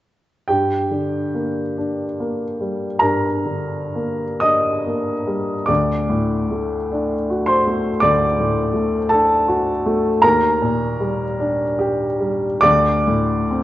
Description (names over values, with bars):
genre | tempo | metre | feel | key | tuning
classical, romantic nocturne for solo piano | 39-57 BPM | 4/4 | rubato | G minor | A4 = 440 Hz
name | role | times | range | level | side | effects
warm upright piano | solo | 0.5-13.6 s | D2 to Eb6 | -17 LUFS | equal | none
room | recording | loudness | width
moderate concert hall reverb, RT60 2.0 s | worn, warbling old tape, cassette tape, warbly pitch drift, nothing above 7.9 kHz | -17 LUFS | side -14 dB against mid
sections
0.5-13.6 A section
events
none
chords
0.5 Gm; 5.7 D; 10.2 Ebmaj7; 12.6 D7(no3)